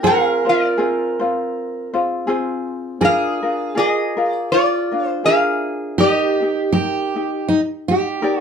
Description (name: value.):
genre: Hawaiian.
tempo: 81 BPM.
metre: 4/4.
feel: swing 56% on 8ths.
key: Eb major.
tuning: A4 = 439 Hz.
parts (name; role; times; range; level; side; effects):
metal-body resonator slide guitar; melody; 0.0-8.2 s; F4 to F5; -18 LUFS; equal; none.
picked steel-string acoustic guitar; second line; 0.0-8.4 s; Eb4 to D5; -21 LUFS; right 3 dB; none.
ukulele; accompaniment; 0.0-8.4 s; C4 to D5; -21 LUFS; left 2 dB; none.
room: moderate studio reverb, RT60 0.5 s.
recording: heard from further back in the room.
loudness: -16 LUFS.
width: side -7 dB against mid.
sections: 0.0-8.4 A section.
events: none.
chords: 0.0 Fm; 3.0 Bb7; 6.0 Eb.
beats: | 0.04 0.78 1.53 2.27 | 3.02 3.76 4.50 5.25 | 5.99 6.74 7.48 8.23.